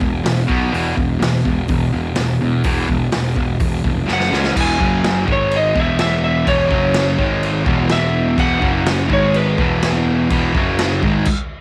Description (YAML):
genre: garage rock duo or trio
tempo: 125 BPM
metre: 4/4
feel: straight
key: E major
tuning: A4 = 440 Hz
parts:
  - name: fuzz guitar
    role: riff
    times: 0.0-11.3 s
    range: E2 to C#4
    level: -21 LUFS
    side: equal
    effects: distortion
  - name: fuzz picked electric bass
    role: bass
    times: 0.0-11.3 s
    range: E1 to E2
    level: -23 LUFS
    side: equal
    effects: overdrive
  - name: raw garage drum kit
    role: drums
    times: 0.0-11.4 s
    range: crash cymbal, hi-hat, kick drum, snare drum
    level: -23 LUFS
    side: equal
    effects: none
  - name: electric slide guitar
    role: melody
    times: 4.1-11.6 s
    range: B4 to G#5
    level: -23 LUFS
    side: equal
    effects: none
room: small room ambience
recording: none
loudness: -17 LUFS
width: mono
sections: 0.0-4.6 A section; 4.6-11.6 B section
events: drum fill 4.1-4.6; stop 11.3-11.6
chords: 0.0 E5; 0.5 B5; 0.7 E5; 4.1 F#5; 4.3 C#5; 4.6 E; 4.8 F#5; 5.3 G#5; 5.8 E5; 6.7 F#5; 7.2 G#5; 7.7 E5; 8.6 F#5; 9.1 G#5; 9.6 E5; 10.6 F#5; 11.0 G#5